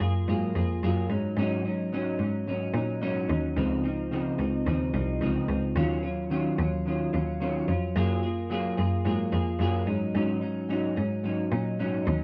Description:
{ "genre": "indie pop, bedroom pop", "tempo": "109 BPM", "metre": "4/4", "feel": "swing 60% on 16ths", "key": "unclear", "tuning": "A4 = 437 Hz", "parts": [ { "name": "semi-hollow electric guitar", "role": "accompaniment", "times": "0.0-12.2 s", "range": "Ab2 to Ab4", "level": "-31 LUFS", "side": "equal", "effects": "analog chorus, warbly pitch drift" }, { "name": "rich cello", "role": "bass", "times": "0.0-12.2 s", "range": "C2 to Bb2", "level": "-31 LUFS", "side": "equal", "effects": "none" } ], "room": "small room reverb", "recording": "dry, close 1970s-style studio recording", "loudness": "-28 LUFS", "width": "mono", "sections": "0.0-12.2 A section", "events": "none", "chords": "0.0 Gbmaj9; 1.1 Ab7sus4; 3.6 Dbmaj9; 5.8 Ebm9; 8.0 Gbmaj9; 9.9 Ab7sus4", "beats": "0.28 0.83 | 1.38 1.92 2.47 3.02 | 3.57 4.12 4.67 5.21 | 5.76 6.31 6.86 7.41 | 7.95 8.50 9.05 9.60 | 10.15 10.70 11.24 11.79" }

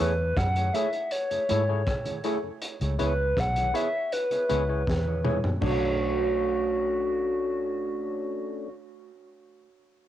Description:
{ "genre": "lovers rock reggae", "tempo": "80 BPM", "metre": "4/4", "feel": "straight", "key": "B dorian", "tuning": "A4 = 440 Hz", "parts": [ { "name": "reedy FM lead", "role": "melody", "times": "0.0-8.7 s", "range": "F#4 to F#5", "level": "-28 LUFS", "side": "equal", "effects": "chorus, cassette tape, analog delay" }, { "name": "mellow tonewheel organ", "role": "accompaniment", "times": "0.0-8.7 s", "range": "F#2 to G#4", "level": "-40 LUFS", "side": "left 7 dB", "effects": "slow rotary speaker, cassette tape" }, { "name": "overdriven tine electric piano", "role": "accompaniment", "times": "0.0-8.7 s", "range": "D4 to C#5", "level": "-33 LUFS", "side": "left 8 dB", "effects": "auto-pan, cassette tape" }, { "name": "mellow electric guitar", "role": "stabs", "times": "0.0-9.2 s", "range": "A3 to C#5", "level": "-33 LUFS", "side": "right 9 dB", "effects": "spring reverb, cassette tape, analog delay" }, { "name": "vintage muted fingered electric bass", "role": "bass", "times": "0.0-8.7 s", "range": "B1 to G#2", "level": "-29 LUFS", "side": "equal", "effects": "transformer saturation" }, { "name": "crunchy breakbeat drum kit", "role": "drums", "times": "0.4-5.8 s", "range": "crash cymbal, hi-hat, kick drum, rim click, snare drum, toms", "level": "-32 LUFS", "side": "equal", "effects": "cassette tape" } ], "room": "light reverb", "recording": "home recording on cassette", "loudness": "-24 LUFS", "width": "side -12 dB against mid", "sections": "0.0-5.6 A section; 5.6-8.6 B section", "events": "drum fill 4.9-5.6", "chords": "0.0 F#m9; 2.6 C#m7; 5.6 Bm9", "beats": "0.36 1.11 1.86 | 2.62 3.37 4.12 4.87 | 5.62 6.37 7.12 7.87" }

